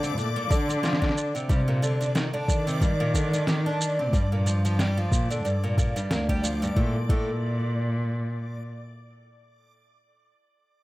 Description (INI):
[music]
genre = folktronica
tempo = 91 BPM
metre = 4/4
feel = swing 56% on 16ths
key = unclear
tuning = A4 = 440 Hz
[part]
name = picked twelve-string acoustic guitar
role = arpeggios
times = 0.0-7.3 s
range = G2 to D4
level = -29 LUFS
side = equal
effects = tape echo
[part]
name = dark cello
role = bass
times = 0.0-8.7 s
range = D2 to Eb3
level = -26 LUFS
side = equal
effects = none
[part]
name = electronic shaker and snare drum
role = drums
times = 0.0-6.7 s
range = none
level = -30 LUFS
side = equal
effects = none
[part]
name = backwards swelling texture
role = texture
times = 0.0-6.8 s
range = D5 to D6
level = -37 LUFS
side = left 2 dB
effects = built-in reverb
[part]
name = electronic kick drum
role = drums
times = 0.5-7.3 s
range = none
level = -24 LUFS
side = equal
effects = overdrive
[sound]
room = little or no reverb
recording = none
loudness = -23 LUFS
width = side -18 dB against mid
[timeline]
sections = 0.0-6.8 A section; 6.8-9.4 B section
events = none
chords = 0.0 Bbmaj9; 1.5 Cm9; 4.1 Gm7; 6.8 N.C.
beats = 0.17 0.83 | 1.49 2.15 2.81 3.47 | 4.13 4.79 5.45 6.11 | 6.77 7.43 8.09